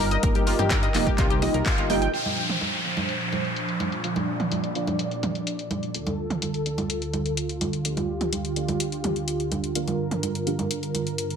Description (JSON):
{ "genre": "progressive house", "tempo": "126 BPM", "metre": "4/4", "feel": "straight", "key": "unclear", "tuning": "A4 = 443 Hz", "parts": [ { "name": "warm analog pad", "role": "sustained chords", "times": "0.0-11.4 s", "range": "D2 to D5", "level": "-28 LUFS", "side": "right 1 dB", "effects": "chorus, sidechain pumping" }, { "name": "analog pluck", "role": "arpeggios", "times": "0.0-2.1 s", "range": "F4 to G5", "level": "-29 LUFS", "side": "left 1 dB", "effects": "chorus, sidechain pumping, ping-pong delay" }, { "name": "deep mellow chord stab", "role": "stabs", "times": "0.0-11.4 s", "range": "Bb3 to F5", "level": "-31 LUFS", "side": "right 2 dB", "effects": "chorus, phaser, sidechain pumping, ping-pong delay" }, { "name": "fat analog bass", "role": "bass", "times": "0.0-2.1 s", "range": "F1 to G2", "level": "-28 LUFS", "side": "left 1 dB", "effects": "sidechain pumping" }, { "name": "house drum kit", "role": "drums", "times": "0.1-11.4 s", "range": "crash cymbal, handclaps, hi-hat", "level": "-32 LUFS", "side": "left 3 dB", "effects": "low-pass filter on hats, low-pass filter on snare, low-pass filter on cymbals, low-pass filter on room" }, { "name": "electronic kick drum", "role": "drums", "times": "0.2-1.8 s", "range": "none", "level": "-25 LUFS", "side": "equal", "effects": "none" }, { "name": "electronic congas and toms", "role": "percussion", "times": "0.4-11.0 s", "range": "none", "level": "-31 LUFS", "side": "right 3 dB", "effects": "overdrive, sidechain pumping on perc, sidechain pumping on toms" }, { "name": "downlifter", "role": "sound effects", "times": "2.1-5.9 s", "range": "none", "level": "-30 LUFS", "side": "left 1 dB", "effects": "none" } ], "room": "light reverb, digital ambience", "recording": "none", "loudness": "-23 LUFS", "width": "side -7 dB against mid", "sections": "0.0-2.1 A section; 2.1-11.4 B section", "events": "filter sweep on analog synth pad 0.0-2.1; band accent 1.7; filter sweep on synth stab 2.1-11.4", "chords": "0.0 Ebadd9; 2.1 Bbadd9; 5.9 Dm; 9.8 Gm7", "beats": "| 0.23 0.71 1.18 1.66 | 2.14 2.61 3.09 3.56 | 4.04 4.52 4.99 5.47 | 5.95 6.42 6.90 7.37 | 7.85 8.33 8.80 9.28 | 9.76 10.23 10.71 11.18" }